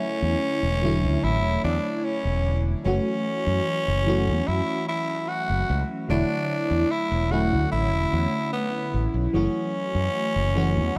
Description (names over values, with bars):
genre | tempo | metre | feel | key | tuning
vaporwave | 74 BPM | 4/4 | straight | unclear | A4 = 440 Hz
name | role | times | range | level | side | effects
growling tenor saxophone | melody | 0.0-11.0 s | B3 to F#4 | -29 LUFS | equal | tape echo
FM electric piano with soft pad layer | accompaniment | 0.0-11.0 s | D3 to C#5 | -29 LUFS | equal | phaser, lush chorus
fretless electric bass | bass | 0.2-11.0 s | E1 to F#2 | -27 LUFS | equal | none
room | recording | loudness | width
light reverb | none | -24 LUFS | mono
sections
0.0-11.0 A section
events
none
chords
0.0 E13sus4; 2.9 F#m7; 6.1 E13sus4; 9.3 F#m7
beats
0.42 1.23 2.04 | 2.85 3.67 4.48 5.29 | 6.10 6.91 7.72 8.53 | 9.34 10.15 10.96